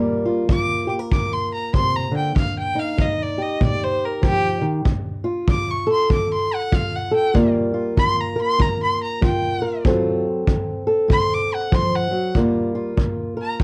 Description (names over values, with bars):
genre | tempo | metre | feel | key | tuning
acoustic country blues, solo or duo | 96 BPM | 4/4 | swing 62% on 8ths | G minor | A4 = 440 Hz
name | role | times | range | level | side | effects
fingerpicked old ladder-braced acoustic guitar | accompaniment | 0.0-13.6 s | G2 to Bb4 | -24 LUFS | equal | none
rich fiddle | melody | 0.5-13.6 s | G4 to D6 | -26 LUFS | equal | slapback echo
kick drum | drums | 0.5-13.6 s | none | -24 LUFS | equal | none
room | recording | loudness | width
light reverb | dark, warm production | -21 LUFS | mono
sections
0.0-12.3 A section; 12.3-13.6 A section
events
fiddle solo 0.0-12.3, 12.3-13.6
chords
0.0 Gm7; 2.4 Eb; 4.9 D; 7.4 Gm7; 9.8 D7#9; 12.3 Gm7